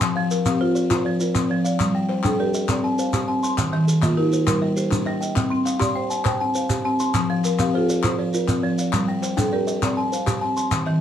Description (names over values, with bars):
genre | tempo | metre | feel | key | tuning
southern african traditional, mbira-style interlocking cycle | 134 BPM (dotted quarters) | 12/8 | straight | C equiheptatonic | A4 = 439 Hz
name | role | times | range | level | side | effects
buzzing kalimba | arpeggios | 0.0-11.0 s | Eb3+43c to C6 | -23 LUFS | left 3 dB | none
marimba with hard mallets | arpeggios | 0.0-11.0 s | Eb3+43c to A5-43c | -23 LUFS | right 2 dB | none
group handclap | percussion | 0.0-10.9 s | none | -29 LUFS | left 5 dB | none
shekere | percussion | 0.0-10.9 s | none | -27 LUFS | right 2 dB | none
room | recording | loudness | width
wet studio ambience, RT60 0.5 s | heard from further back in the room | -19 LUFS | side -10 dB against mid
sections
0.0-11.0 A section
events
none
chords
0.0 F; 1.8 Gm; 2.7 Cm; 3.6 Eb; 4.5 Gm; 5.4 Cm; 7.2 F; 8.9 Gm; 9.8 Cm